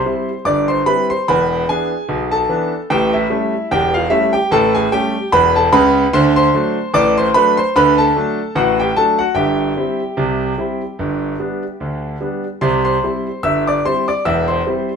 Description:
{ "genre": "ragtime piano", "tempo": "74 BPM", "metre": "2/4", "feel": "swing 56% on 16ths", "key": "C major", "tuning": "A4 = 440 Hz", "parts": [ { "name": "clear concert grand piano", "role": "solo", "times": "0.0-15.0 s", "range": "E1 to E6", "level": "-14 LUFS", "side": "equal", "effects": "none" } ], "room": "wet studio reverb, RT60 0.6 s", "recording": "band playing live in one room", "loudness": "-14 LUFS", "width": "side -6 dB against mid", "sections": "0.0-15.0 A section", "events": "none", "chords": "0.0 C; 1.3 E7; 2.9 A7; 6.1 D7; 9.4 C/G; 11.0 G; 12.6 C; 14.2 C/E" }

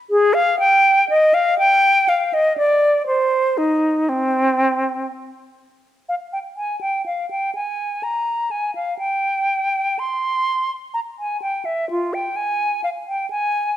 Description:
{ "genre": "classical, baroque-style fantasia for unaccompanied flute", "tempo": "61 BPM", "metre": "3/4", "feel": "uneven beats, rubato", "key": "C minor", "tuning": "A4 = 440 Hz", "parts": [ { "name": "bright concert flute", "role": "solo", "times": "0.1-13.8 s", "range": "C4 to C6", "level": "-17 LUFS", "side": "equal", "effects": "none" } ], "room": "moderate recital hall reverb, RT60 1.7 s", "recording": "none", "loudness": "-17 LUFS", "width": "side -12 dB against mid", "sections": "0.0-6.1 A section; 6.1-13.8 A section", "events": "none", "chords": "none" }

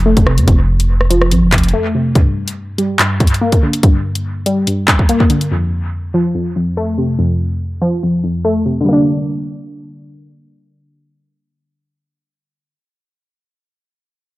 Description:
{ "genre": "hip hop, drill", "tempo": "143 BPM", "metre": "4/4", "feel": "half-time", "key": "G minor", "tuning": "A4 = 440 Hz", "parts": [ { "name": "warbly dusty pluck", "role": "accompaniment", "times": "0.0-12.9 s", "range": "F2 to D4", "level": "-15 LUFS", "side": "equal", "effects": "chorus, low-pass filter" }, { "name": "long sustained 808-style bass", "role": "bass", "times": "0.0-1.7 s", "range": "F1 to F2", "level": "-14 LUFS", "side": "equal", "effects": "none" }, { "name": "drill drum kit", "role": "drums", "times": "0.2-5.5 s", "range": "handclaps, hi-hat, kick drum, rim click", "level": "-13 LUFS", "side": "equal", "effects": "dub echo" } ], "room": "little or no reverb", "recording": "echo-heavy mix", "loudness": "-12 LUFS", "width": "side -18 dB against mid", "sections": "0.0-2.2 A section; 2.2-8.9 B section; 8.9-12.2 C section", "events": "break 1.7-2.2; filter sweep on synth pluck 2.2-8.9", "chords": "0.0 F; 2.2 Gm; 5.5 F; 8.9 Gm" }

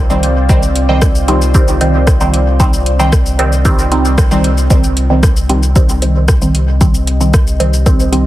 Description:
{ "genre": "dub techno", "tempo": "114 BPM", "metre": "4/4", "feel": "straight", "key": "C minor", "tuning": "A4 = 440 Hz", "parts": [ { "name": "deep dark ambient pad", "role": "sustained chords", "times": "0.0-8.3 s", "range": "C4 to Eb5", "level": "-22 LUFS", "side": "equal", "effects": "chorus, built-in reverb, sidechain pumping" }, { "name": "filtered dub chord stab", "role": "stabs", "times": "0.0-8.3 s", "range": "Eb3 to C4", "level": "-15 LUFS", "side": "right 1 dB", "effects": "chorus, phaser, vintage 12-bit sampler grit, sidechain pumping, dub echo" }, { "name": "warm sub bass", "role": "bass", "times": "0.0-8.3 s", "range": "C2", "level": "-14 LUFS", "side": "equal", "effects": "sidechain pumping" }, { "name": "metallic inharmonic drone", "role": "texture", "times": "0.1-4.7 s", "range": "C4", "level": "-27 LUFS", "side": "right 3 dB", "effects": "none" }, { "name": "deep house drum kit", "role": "drums", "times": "0.1-8.2 s", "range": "hi-hat, rim click, shaker", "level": "-21 LUFS", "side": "left 1 dB", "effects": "overdrive" }, { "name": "electronic kick drum", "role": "drums", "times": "0.5-8.0 s", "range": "none", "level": "-11 LUFS", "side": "equal", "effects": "overdrive" }, { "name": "wavetable chord stab", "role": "riff", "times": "0.9-3.1 s", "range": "C5 to G5", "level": "-27 LUFS", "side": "right 1 dB", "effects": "sidechain pumping, dub echo" } ], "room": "light reverb", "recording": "dense, heavily limited modern master, vinyl crackle", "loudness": "-9 LUFS", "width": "side -15 dB against mid", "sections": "0.0-4.7 A section; 4.7-8.3 A section", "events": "band accent 4.2", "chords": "0.0 Cm" }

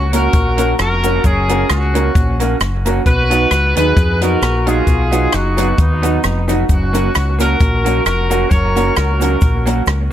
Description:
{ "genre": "ska", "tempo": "132 BPM", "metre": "4/4", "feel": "swing 56% on 8ths", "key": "F# major", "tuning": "A4 = 440 Hz", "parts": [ { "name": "clear horn section", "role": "melody", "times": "0.0-9.7 s", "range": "B3 to C#5", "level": "-18 LUFS", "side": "left 1 dB", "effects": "tape echo, plate reverb" }, { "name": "fingered electric bass", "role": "bass", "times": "0.0-10.1 s", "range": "E#1 to E#2", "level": "-17 LUFS", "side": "equal", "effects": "none" }, { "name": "electric guitar through a small old amp", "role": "accompaniment", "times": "0.1-10.1 s", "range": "A#3 to F#4", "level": "-21 LUFS", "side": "right 6 dB", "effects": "tape echo, plate reverb" }, { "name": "warm upright piano", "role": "stabs", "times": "0.1-9.8 s", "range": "F#3 to A#4", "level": "-23 LUFS", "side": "left 4 dB", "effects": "plate reverb" }, { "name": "compact cocktail drum kit", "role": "drums", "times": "0.1-10.0 s", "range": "hi-hat, kick drum, rim click", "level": "-16 LUFS", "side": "equal", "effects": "none" }, { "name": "cabasa", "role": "percussion", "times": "0.1-10.0 s", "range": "none", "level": "-33 LUFS", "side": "left 8 dB", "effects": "none" } ], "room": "light reverb", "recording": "none", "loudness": "-12 LUFS", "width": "side -11 dB against mid", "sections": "0.0-10.1 A section", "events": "none", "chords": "0.0 F#; 3.1 B; 6.7 F#" }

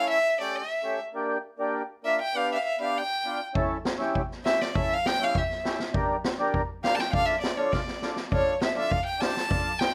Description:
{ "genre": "klezmer", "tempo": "100 BPM", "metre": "2/4", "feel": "straight", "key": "D harmonic minor", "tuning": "A4 = 440 Hz", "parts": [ { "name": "rich violin", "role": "melody", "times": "0.0-9.9 s", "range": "C#5 to A5", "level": "-29 LUFS", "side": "equal", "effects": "none" }, { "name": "mellow accordion", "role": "accompaniment", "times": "0.0-9.7 s", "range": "A3 to Bb4", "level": "-33 LUFS", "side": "equal", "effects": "none" }, { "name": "street-band drum kit", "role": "drums", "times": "3.6-9.9 s", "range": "kick drum, snare drum", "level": "-31 LUFS", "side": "equal", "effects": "none" } ], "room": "moderate studio reverb, RT60 0.6 s", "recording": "none", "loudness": "-27 LUFS", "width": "mono", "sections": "0.0-8.3 A section; 8.3-9.9 B section", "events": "drum fill 7.7-8.3; violin solo 8.3-9.9", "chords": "0.0 A; 1.1 Gm; 2.4 G; 3.5 A; 5.9 Gm; 7.1 Dm" }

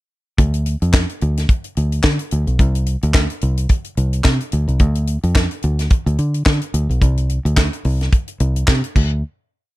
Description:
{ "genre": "disco", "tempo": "108 BPM", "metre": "4/4", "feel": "swing 56% on 16ths", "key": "unclear", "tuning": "A4 = 440 Hz", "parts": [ { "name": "fingered electric bass", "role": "bass", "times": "0.4-9.2 s", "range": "B1 to D3", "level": "-17 LUFS", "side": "equal", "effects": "none" }, { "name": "tight funk drum kit", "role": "drums", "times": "0.4-9.1 s", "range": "crash cymbal, handclaps, hi-hat, kick drum, snare drum", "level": "-17 LUFS", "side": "equal", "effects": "none" } ], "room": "little or no reverb", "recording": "none", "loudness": "-15 LUFS", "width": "side -18 dB against mid", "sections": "0.4-9.2 verse; 9.2-9.8 final hit", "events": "none", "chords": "none" }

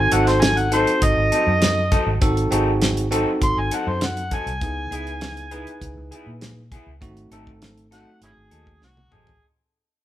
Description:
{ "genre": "straight-eighth soul blues", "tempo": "100 BPM", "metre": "4/4", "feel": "straight", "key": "unclear", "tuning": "A4 = 440 Hz", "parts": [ { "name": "overdriven harmonica", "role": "melody", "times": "0.0-9.4 s", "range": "C#4 to B#5", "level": "-22 LUFS", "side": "equal", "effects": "none" }, { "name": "bell-like tine electric piano", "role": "accompaniment", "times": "0.0-9.0 s", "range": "A3 to B4", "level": "-25 LUFS", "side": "right 1 dB", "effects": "none" }, { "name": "vintage muted fingered electric bass", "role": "bass", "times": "0.0-9.4 s", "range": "G#1 to A#2", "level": "-25 LUFS", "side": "equal", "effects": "none" }, { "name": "electric guitar through a small old amp", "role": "stabs", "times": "0.1-9.3 s", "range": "F#3 to A4", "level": "-27 LUFS", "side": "left 3 dB", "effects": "spring reverb" }, { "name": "damped 70s drum kit", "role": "drums", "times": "0.1-9.4 s", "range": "hi-hat, kick drum, snare drum, toms", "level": "-22 LUFS", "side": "equal", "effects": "none" } ], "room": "light reverb", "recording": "band playing live in one room", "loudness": "-18 LUFS", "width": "side -12 dB against mid", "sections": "0.0-9.4 A section", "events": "fade-out 0.0-9.4; drum fill 8.8-9.4", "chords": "0.0 G#7b9; 4.6 C#m7; 7.0 G#7b9" }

